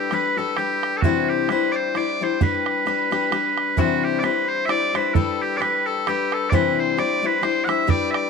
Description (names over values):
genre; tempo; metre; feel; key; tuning
celtic folk, Celtic waltz; 131 BPM; 3/4; swing 56% on 8ths; unclear; A4 = 440 Hz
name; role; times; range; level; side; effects
loud bright bagpipes; melody; 0.0-8.3 s; F#4 to F#5; -22 LUFS; right 2 dB; none
fingerpicked steel-string acoustic guitar; accompaniment; 0.0-8.3 s; C3 to C5; -23 LUFS; left 10 dB; none
bodhran; percussion; 0.1-8.2 s; none; -23 LUFS; right 6 dB; none
room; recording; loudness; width
moderate spring reverb, RT60 2.5 s; 1960s-style stereo with parts hard left and right; -19 LUFS; side -5 dB against mid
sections
0.0-3.8 A section; 3.8-8.3 A section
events
none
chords
0.0 G; 1.0 Cadd9; 2.4 G; 3.8 Cadd9; 5.2 G; 6.5 Cadd9